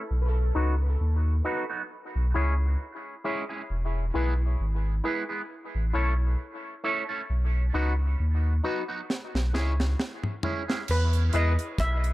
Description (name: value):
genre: dub reggae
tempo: 67 BPM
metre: 4/4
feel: swing 56% on 16ths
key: E major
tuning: A4 = 439 Hz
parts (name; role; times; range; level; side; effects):
- steel pan; melody; 0.0-0.1, 10.9-12.1 s; A4 to E5; -34 LUFS; equal; low-pass filter, dub echo
- warm sub bass; bass; 0.1-12.1 s; E1 to E2; -24 LUFS; equal; none
- electric guitar with an envelope filter; accompaniment; 0.5-11.5 s; F#3 to A4; -34 LUFS; right 4 dB; phaser, low-pass filter, dub echo
- percussive organ stab; stabs; 0.6-11.5 s; D#4 to C#5; -34 LUFS; left 3 dB; chorus, low-pass filter, dub echo
- deep reggae drum kit; drums; 9.1-12.1 s; crash cymbal, hi-hat, kick drum, rim click, snare drum, toms; -31 LUFS; equal; none
room: light reverb, small room reverb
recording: echo-heavy mix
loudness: -25 LUFS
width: side -17 dB against mid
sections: 0.0-10.9 A section; 10.9-12.1 B section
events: drum fill 9.1-10.9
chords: 0.1 B; 1.9 C#m; 3.7 E; 5.5 A; 7.3 B; 9.1 C#m; 10.9 E